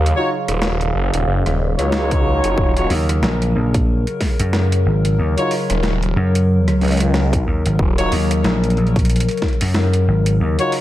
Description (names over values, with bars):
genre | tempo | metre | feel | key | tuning
glitch hop | 92 BPM | 4/4 | swing 58% on 16ths | Eb minor | A4 = 440 Hz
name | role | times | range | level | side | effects
warbly tape-like pad | sustained chords | 0.0-10.8 s | Db3 to F5 | -22 LUFS | left 1 dB | chorus, built-in reverb, sidechain pumping
phased detuned saw bass | bass | 0.0-8.1 s | Eb1 to Eb2 | -18 LUFS | equal | phaser, tube saturation
boom bap sampler-style drum kit | drums | 0.1-10.8 s | hi-hat, rim click, snare drum | -25 LUFS | equal | overdrive
clear horn section | stabs | 0.2-10.7 s | Eb4 to Db5 | -22 LUFS | equal | sidechain pumping, tape echo
electronic kick drum | drums | 2.1-9.6 s | none | -18 LUFS | equal | none
vintage slap bass | bass | 2.9-10.6 s | Ab1 to Gb2 | -16 LUFS | equal | none
room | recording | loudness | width
light reverb | none | -15 LUFS | side -14 dB against mid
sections
0.0-10.8 A section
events
none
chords
0.0 Ebm9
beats
0.62 1.27 1.92 | 2.58 3.23 3.88 4.53 | 5.18 5.84 6.49 7.14 | 7.79 8.45 9.10 9.75 | 10.40